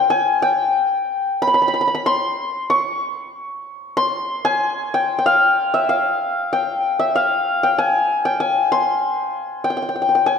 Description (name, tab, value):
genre	indian classical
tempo	94 BPM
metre	4/4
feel	straight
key	C raga bhairav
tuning	A4 = 441 Hz
part	santur	solo	0.0-10.4 s	E5 to Db6	-16 LUFS	left 2 dB	none
room	wet scoring stage reverb, RT60 1.9 s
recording	recorded in a church or concert hall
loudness	-16 LUFS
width	side -6 dB against mid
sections	0.0-2.7 A section; 2.7-10.4 B section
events	speeding up 0.0-10.4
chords	none